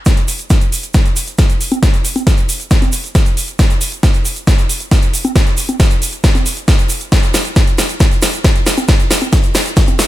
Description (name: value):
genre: trance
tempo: 136 BPM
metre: 4/4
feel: straight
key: none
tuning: none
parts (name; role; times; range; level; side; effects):
- big-room dance drum kit; drums; 0.1-10.1 s; congas, hi-hat, snare drum; -17 LUFS; equal; high-pass filter on snare, high-pass filter on hats, high-pass filter on perc, high-pass filter on room
- electronic kick drum; drums; 0.1-9.9 s; none; -12 LUFS; equal; none
- egg shaker; percussion; 0.1-10.1 s; none; -23 LUFS; right 4 dB; none
room: little or no reverb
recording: none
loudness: -11 LUFS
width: side -15 dB against mid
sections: 0.1-10.1 A section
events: build-up 0.1-10.1; drum fill 0.1-10.1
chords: none